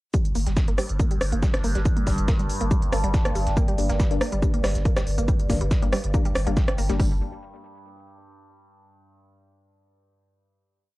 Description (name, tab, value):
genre	driving peak-time techno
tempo	140 BPM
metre	4/4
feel	straight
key	G minor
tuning	A4 = 440 Hz
part	wide unison pluck	riff	0.1-7.2 s	G3 to Bb3	-32 LUFS	right 1 dB	sidechain pumping, tape echo
part	overtone-sweeping drone	drone	0.8-7.0 s	G2	-33 LUFS	right 1 dB	chorus, built-in reverb, sidechain pumping
part	electronic shaker and snare drum	drums	0.1-7.0 s	none	-40 LUFS	equal	high-pass filter on perc, cassette tape, high-pass filter on snare
part	techno drum kit	drums	0.1-7.1 s	hi-hat, kick drum	-22 LUFS	equal	overdrive, cassette tape
part	techno drum kit	drums	0.1-7.0 s	hi-hat, rim click	-30 LUFS	equal	overdrive, sidechain pumping on hats, cassette tape
part	saturated sub bass	bass	0.4-7.2 s	G1	-25 LUFS	equal	overdrive, sidechain pumping, low-pass filter
part	filtered dub chord stab	stabs	3.8-7.2 s	G3 to D4	-32 LUFS	left 8 dB	chorus, sidechain pumping, tape echo
room	little or no reverb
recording	home recording on cassette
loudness	-20 LUFS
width	side -19 dB against mid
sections	0.1-7.0 groove; 7.0-8.7 final chord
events	filter sweep on synth arpeggio sound 0.1-7.0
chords	0.1 Gm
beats	| 0.14 0.57 1.00 1.43 | 1.85 2.28 2.71 3.14 | 3.57 4.00 4.42 4.85 | 5.28 5.71 6.14 6.57 | 7.00